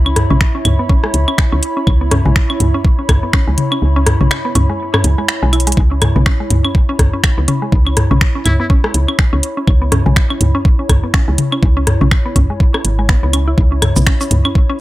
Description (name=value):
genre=minimal techno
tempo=123 BPM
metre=4/4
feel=swing 58% on 16ths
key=C# minor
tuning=A4 = 439 Hz
part: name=woody FM bass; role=bass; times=0.0-14.4 s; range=G#1 to C#2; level=-14 LUFS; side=equal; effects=sidechain pumping
part: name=warbly tape-like pad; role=texture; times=0.0-14.8 s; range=E4 to B5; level=-23 LUFS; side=right 1 dB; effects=chorus, built-in reverb, sidechain pumping
part: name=mallet-like synth pluck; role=riff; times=0.1-14.7 s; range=G#3 to E4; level=-22 LUFS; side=equal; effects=chorus, cassette tape, sidechain pumping, dub echo
part: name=booming analog drum machine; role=percussion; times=0.1-14.5 s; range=claves, rim click, toms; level=-16 LUFS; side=left 1 dB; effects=none
part: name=garage drum kit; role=drums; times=0.2-14.4 s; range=finger snaps, hi-hat, shaker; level=-18 LUFS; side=equal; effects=none
part: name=electronic kick drum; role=drums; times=0.4-14.7 s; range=none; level=-12 LUFS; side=equal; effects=none
part: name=trumpet with metal mute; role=melody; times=8.5-8.7 s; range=E4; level=-23 LUFS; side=equal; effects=tape echo
room=little or no reverb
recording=none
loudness=-11 LUFS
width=side -17 dB against mid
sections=0.0-14.8 A section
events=kick drops out 3.8-5.8; drum fill 5.5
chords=0.0 C#m7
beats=0.41 0.90 1.38 | 1.87 2.36 2.85 3.33 | 3.82 4.31 4.80 5.29 | 5.77 6.26 6.75 7.24 | 7.72 8.21 8.70 9.19 | 9.68 10.16 10.65 11.14 | 11.63 12.11 12.60 13.09 | 13.58 14.06 14.55